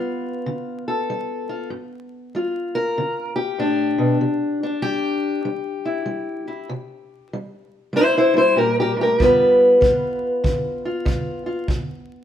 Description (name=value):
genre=acoustic country blues, solo or duo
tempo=96 BPM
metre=4/4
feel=swing 64% on 8ths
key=G mixolydian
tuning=A4 = 440 Hz
part: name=fingerpicked steel-string acoustic guitar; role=melody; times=0.0-12.2 s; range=G2 to C5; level=-18 LUFS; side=left 1 dB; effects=none
part: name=kick drum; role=drums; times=9.2-11.9 s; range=none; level=-23 LUFS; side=equal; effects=none
room=moderate stone room reverb, RT60 1.2 s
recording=band playing live in one room, vinyl crackle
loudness=-18 LUFS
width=side -10 dB against mid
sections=0.0-12.2 A section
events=none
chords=0.0 G7; 4.2 C; 9.2 G7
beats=0.47 1.10 | 1.72 2.34 2.96 3.59 | 4.21 4.83 5.46 6.08 | 6.70 7.33 7.95 8.57 | 9.20 9.82 10.45 11.07 | 11.69